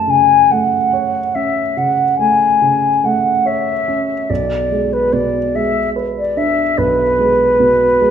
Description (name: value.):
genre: classical, romantic duo for flute and grand piano.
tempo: 48 BPM (dotted quarters).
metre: 12/8.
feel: rubato.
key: F# minor.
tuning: A4 = 440 Hz.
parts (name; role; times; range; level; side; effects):
mellow concert flute; melody; 0.0-8.1 s; B4 to A5; -13 LUFS; left 2 dB; none.
warm grand piano; accompaniment; 0.0-8.1 s; B1 to C#5; -19 LUFS; right 4 dB; none.
room: wet recital hall reverb, RT60 1.5 s.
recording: minimal, uncompressed stereo recording.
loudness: -12 LUFS.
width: side -8 dB against mid.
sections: 0.0-8.1 A section.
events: none.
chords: 0.0 F#m; 4.3 G#dim/B.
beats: 0.51 1.77 3.05 | 4.30 5.55 6.78 8.02.